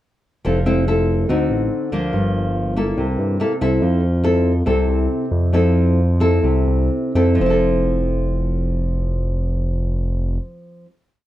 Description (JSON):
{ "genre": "bossa nova", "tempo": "121-143 BPM", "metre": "4/4", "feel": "straight", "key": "F major", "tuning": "A4 = 438 Hz", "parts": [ { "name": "nylon-string guitar", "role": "accompaniment", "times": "0.4-11.0 s", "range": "G2 to A4", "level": "-20 LUFS", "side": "equal", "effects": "none" }, { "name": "smooth synth bass", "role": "bass", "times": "0.5-10.4 s", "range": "F1 to G2", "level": "-19 LUFS", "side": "equal", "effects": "none" } ], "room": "little or no reverb", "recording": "dark, warm production", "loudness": "-16 LUFS", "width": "side -14 dB against mid", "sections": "0.5-7.4 A section; 7.4-11.3 final chord", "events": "slowing down 3.8-7.4", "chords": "0.5 Fmaj7; 1.3 D7b9; 2.1 Gm7; 3.0 C6; 3.8 Fmaj7" }